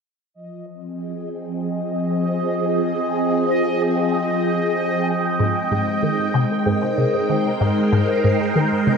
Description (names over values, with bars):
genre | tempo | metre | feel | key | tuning
ambient, sequencer-driven space music | 95 BPM | 4/4 | straight | F minor | A4 = 441 Hz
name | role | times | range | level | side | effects
phased string machine | sustained chords | 0.3-9.0 s | F3 to G5 | -20 LUFS | equal | ensemble chorus, phaser
bubbling stepped-filter texture | texture | 0.3-9.0 s | Eb5 | -26 LUFS | right 1 dB | chorus, built-in reverb
resonant blip pluck | riff | 5.4-9.0 s | Ab2 to Eb3 | -21 LUFS | left 1 dB | phaser, ensemble chorus, ping-pong delay
room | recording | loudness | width
wet spring reverb, RT60 2.5 s | echo-heavy mix | -18 LUFS | side -5 dB against mid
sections
0.3-9.0 A section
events
filter sweep on string machine 0.3-9.0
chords
0.3 Fm7; 5.4 Abmaj7